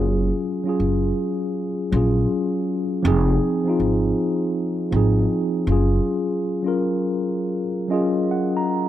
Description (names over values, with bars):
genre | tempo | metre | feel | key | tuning
lo-fi hip hop | 80 BPM | 4/4 | swing 65% on 16ths | unclear | A4 = 441 Hz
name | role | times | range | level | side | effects
mellow tine electric piano | accompaniment | 0.0-8.9 s | F3 to Bb5 | -20 LUFS | equal | slow stereo tremolo, cassette tape
upright bass | bass | 0.0-6.0 s | F1 to Bb1 | -20 LUFS | equal | none
room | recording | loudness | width
light reverb, studio ambience | none | -19 LUFS | side -12 dB against mid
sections
0.0-8.9 A section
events
break 6.0-8.9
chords
0.0 Gbmaj7sus2; 3.0 Fm7; 5.7 Gbmaj13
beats
| 0.04 0.79 1.54 2.29 | 3.04 3.79 4.54 5.29 | 6.04 6.79 7.54 8.29